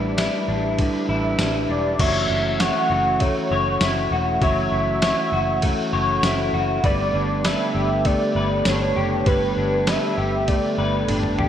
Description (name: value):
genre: dream pop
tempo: 99 BPM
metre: 4/4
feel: straight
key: unclear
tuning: A4 = 437 Hz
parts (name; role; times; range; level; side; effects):
- warm velvety synth lead; melody; 0.0-11.4 s; B4 to F#5; -25 LUFS; right 1 dB; chorus, digital delay
- mellow tonewheel organ; sustained chords; 0.0-11.5 s; D3 to B4; -26 LUFS; right 2 dB; slow rotary speaker
- electric guitar through a small old amp; arpeggios; 0.0-11.5 s; A2 to C#5; -24 LUFS; left 3 dB; ensemble chorus, digital delay
- vintage muted fingered electric bass; bass; 0.0-11.5 s; E1 to A1; -26 LUFS; equal; none
- trip hop sampler-style drum kit; drums; 0.2-11.5 s; crash cymbal, kick drum, ride cymbal, snare drum, tambourine, toms; -25 LUFS; equal; gated reverb
room: moderate lush hall reverb, RT60 1.9 s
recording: bright 1980s-style digital production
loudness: -18 LUFS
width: side -9 dB against mid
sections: 0.0-2.0 A section; 2.0-11.5 B section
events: drum fill 11.1-11.5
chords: 0.0 A7sus4; 2.0 F#m7; 6.8 Gadd9